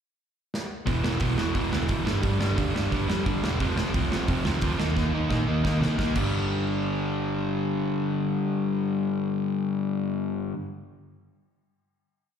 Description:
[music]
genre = punk rock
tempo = 176 BPM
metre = 4/4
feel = straight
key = unclear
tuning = A4 = 440 Hz
[part]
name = big rock drum kit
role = drums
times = 0.5-6.2 s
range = crash cymbal, hi-hat, kick drum, snare drum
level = -30 LUFS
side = equal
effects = none
[part]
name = overdriven electric guitar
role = riff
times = 0.9-10.5 s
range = E2 to Eb4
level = -29 LUFS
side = right 9 dB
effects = none
[part]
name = sludgy distorted guitar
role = riff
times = 0.9-10.5 s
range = E2 to Eb4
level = -28 LUFS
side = left 11 dB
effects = overdrive, slapback echo
[part]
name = hollow-body short-scale picked electric bass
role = bass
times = 0.9-10.5 s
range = E1 to C3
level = -30 LUFS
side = right 1 dB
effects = none
[sound]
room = small room reverb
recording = live gig heard through the venue's PA, recital hall reverb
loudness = -24 LUFS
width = side -8 dB against mid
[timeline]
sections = 0.0-0.9 pickup bar; 0.9-6.3 verse; 6.3-9.0 final hit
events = drum fill 0.5-0.9, 5.0-6.3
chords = 0.0 N.C.; 0.9 E5; 2.1 G5; 3.6 F5; 4.8 Eb5; 6.2 G5

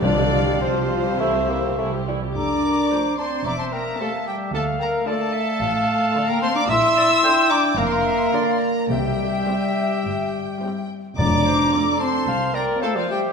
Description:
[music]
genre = quick classical-period movement for symphony orchestra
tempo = 101-112 BPM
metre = 4/4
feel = rubato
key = F major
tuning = A4 = 440 Hz
[part]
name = rich chamber violin section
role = melody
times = 0.0-13.2 s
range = C5 to E6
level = -27 LUFS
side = left 3 dB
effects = none
[part]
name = clear clarinet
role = second line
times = 0.0-13.3 s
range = C4 to G5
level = -28 LUFS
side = left 1 dB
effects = none
[part]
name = mellow hollow silver concert flute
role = second line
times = 0.0-13.3 s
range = C5 to C6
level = -27 LUFS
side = left 2 dB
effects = none
[part]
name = rich chamber violin section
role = second line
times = 0.0-13.2 s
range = E4 to D5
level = -32 LUFS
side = left 5 dB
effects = none
[part]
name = warm chamber viola section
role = accompaniment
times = 0.0-13.2 s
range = D3 to G4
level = -32 LUFS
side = right 1 dB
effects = none
[part]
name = mellow French horn section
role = sustained chords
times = 0.0-13.2 s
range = F3 to G4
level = -24 LUFS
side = left 1 dB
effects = none
[part]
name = warm trumpet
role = stabs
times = 0.0-13.3 s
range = F4 to F5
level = -25 LUFS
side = right 2 dB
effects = none
[part]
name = rich symphonic cello section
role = bass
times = 0.0-12.7 s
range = C2 to D3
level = -34 LUFS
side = right 3 dB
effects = none
[part]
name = warm studio double bass section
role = bass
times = 0.0-12.7 s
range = E1 to D2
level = -31 LUFS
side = right 4 dB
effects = none
[part]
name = timpani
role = percussion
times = 0.0-0.9, 8.9-12.0 s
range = F2 to C3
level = -25 LUFS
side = equal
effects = none
[part]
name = warm bassoon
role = accompaniment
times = 0.6-2.2 s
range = F3 to Bb3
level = -26 LUFS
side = right 2 dB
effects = none
[sound]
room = wet scoring stage reverb, RT60 1.8 s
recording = minimal, uncompressed stereo recording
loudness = -18 LUFS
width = side -5 dB against mid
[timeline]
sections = 0.0-2.4 A section; 2.4-13.3 B section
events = none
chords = 0.0 Csus4; 1.2 C; 2.4 F; 3.5 C/E; 4.5 Dm; 6.7 Bb; 8.9 C; 11.2 F

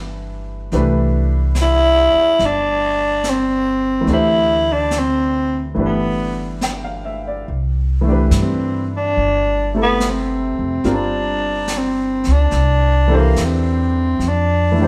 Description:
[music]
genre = jazz ballad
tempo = 71 BPM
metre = 4/4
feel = swing 69% on 8ths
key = C major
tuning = A4 = 440 Hz
[part]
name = bright upright piano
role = accompaniment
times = 0.0-14.9 s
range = C3 to G5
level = -24 LUFS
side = equal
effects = none
[part]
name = upright bass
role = bass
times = 0.0-14.9 s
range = F1 to G2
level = -22 LUFS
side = equal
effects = none
[part]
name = jazz brush drum kit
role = drums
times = 0.7-14.9 s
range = brushed snare drum, hi-hat, snare drum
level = -32 LUFS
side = equal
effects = none
[part]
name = growling tenor saxophone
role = melody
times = 1.6-14.9 s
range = Bb3 to E4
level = -19 LUFS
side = equal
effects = none
[sound]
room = moderate stone room reverb, RT60 1.1 s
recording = band playing live in one room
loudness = -17 LUFS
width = mono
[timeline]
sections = 0.0-7.5 A section; 7.5-14.9 B section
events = tenor saxophone solo 7.5-14.9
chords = 0.0 G; 0.7 Cmaj9; 4.1 D5; 5.8 G; 7.5 Cmaj9; 10.9 Gm7; 12.5 C69; 14.2 F6

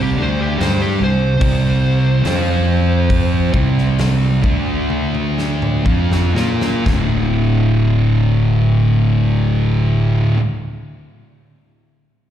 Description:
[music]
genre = stoner and doom metal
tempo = 58-75 BPM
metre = 4/4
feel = straight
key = D minor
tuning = A4 = 440 Hz
[part]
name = fuzz lead guitar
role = melody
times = 0.0-3.5 s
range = G4 to C5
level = -24 LUFS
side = equal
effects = distortion, slapback echo, tape echo
[part]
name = thick fuzz guitar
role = riff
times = 0.0-10.4 s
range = D2 to Bb4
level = -21 LUFS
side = left 9 dB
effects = distortion
[part]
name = thick fuzz guitar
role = riff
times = 0.0-10.4 s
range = D2 to Bb4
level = -17 LUFS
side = right 3 dB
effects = distortion
[part]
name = fuzz fingered electric bass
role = bass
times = 0.0-10.2 s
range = D1 to Bb2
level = -19 LUFS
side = left 1 dB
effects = overdrive
[part]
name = big rock drum kit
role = drums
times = 0.6-7.1 s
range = hi-hat, kick drum, snare drum, toms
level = -21 LUFS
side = left 1 dB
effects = none
[sound]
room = small room reverb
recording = live gig heard through the venue's PA, recital hall reverb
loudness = -13 LUFS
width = side -10 dB against mid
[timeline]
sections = 0.0-6.9 A section; 6.9-11.0 B section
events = slowing down 0.0-6.9; lead electric guitar solo 0.0-6.9; drum fill 4.9-6.9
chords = 0.0 C5; 2.2 F5; 3.5 C5; 4.4 D5; 5.8 Fsus4; 6.9 D5

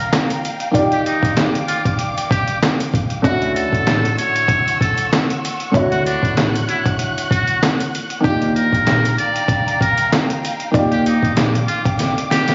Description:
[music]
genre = hip hop, boom-bap hip-hop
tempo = 96 BPM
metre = 4/4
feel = swing 55% on 16ths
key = unclear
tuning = A4 = 440 Hz
[part]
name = trumpet with metal mute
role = melody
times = 0.0-12.5 s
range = D4 to D5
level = -23 LUFS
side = equal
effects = high-pass filter, low-pass filter, tape echo
[part]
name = warm upright piano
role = accompaniment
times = 0.0-12.5 s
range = D3 to D5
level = -24 LUFS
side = equal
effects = cassette tape, high-pass filter, low-pass filter
[part]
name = warm studio string section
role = sustained chords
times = 0.0-12.5 s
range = F5 to F#6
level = -30 LUFS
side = equal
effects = high-pass filter, low-pass filter
[part]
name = trip hop sampler-style drum kit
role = drums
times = 0.1-12.5 s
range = handclaps, hi-hat, kick drum, snare drum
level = -21 LUFS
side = equal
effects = overdrive
[part]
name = upright bass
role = bass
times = 3.2-11.6 s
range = A1 to Eb2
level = -23 LUFS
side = equal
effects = none
[sound]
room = little or no reverb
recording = recorded on a phone in the room, club reverb, vinyl crackle, compression, nothing above 7.7 kHz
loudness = -18 LUFS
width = mono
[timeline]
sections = 0.0-12.5 A section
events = break 0.0-3.2; drum fill 12.0-12.5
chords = 0.0 Ebmaj9; 3.2 Dmaj9; 8.2 Ebmaj9

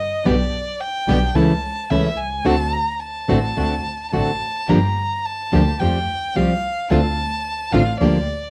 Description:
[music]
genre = tango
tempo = 109 BPM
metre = 4/4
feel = rubato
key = unclear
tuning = A4 = 440 Hz
[part]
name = warm violin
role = second line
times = 0.0-8.5 s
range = D5 to Bb5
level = -26 LUFS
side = equal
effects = none
[part]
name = nylon-string guitar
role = accompaniment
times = 0.3-8.2 s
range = B2 to G4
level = -21 LUFS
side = equal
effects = none
[part]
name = warm symphonic string section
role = stabs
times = 0.3-8.2 s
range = A3 to A4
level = -31 LUFS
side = equal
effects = none
[part]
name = dark double bass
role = bass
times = 0.3-8.2 s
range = G1 to F2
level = -25 LUFS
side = equal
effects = none
[sound]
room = light reverb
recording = none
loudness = -20 LUFS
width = mono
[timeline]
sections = 0.0-8.5 A section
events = violin solo 0.0-8.5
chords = 0.3 G/B; 1.4 A/C#; 2.5 D7; 4.7 Gm7; 5.8 Fadd9; 6.9 Dm7

